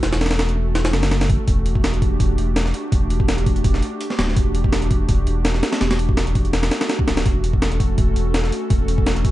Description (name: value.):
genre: drum and bass, jungle.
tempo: 166 BPM.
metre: 4/4.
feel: swing 53% on 16ths.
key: E dorian.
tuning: A4 = 441 Hz.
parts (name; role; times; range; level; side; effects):
airy breathy pad; sustained chords; 0.0-9.3 s; A3 to A4; -26 LUFS; right 1 dB; chorus.
saturated sub bass; bass; 0.0-9.3 s; D1 to F#1; -20 LUFS; equal; none.
breakbeat sampler-style drum kit; drums; 0.0-9.3 s; hi-hat, kick drum, snare drum; -19 LUFS; equal; none.
room: digital ambience.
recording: dark, warm production, vinyl crackle, nothing above 10.4 kHz.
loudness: -17 LUFS.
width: side -15 dB against mid.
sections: 0.0-9.3 A section.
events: none.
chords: 0.0 F#m/E; 1.5 Em11; 7.3 F#m/E.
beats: | 0.03 0.39 0.75 1.11 | 1.48 1.84 2.20 2.56 | 2.92 3.28 3.64 4.00 | 4.37 4.73 5.09 5.45 | 5.81 6.17 6.54 6.90 | 7.26 7.62 7.98 8.34 | 8.70 9.06.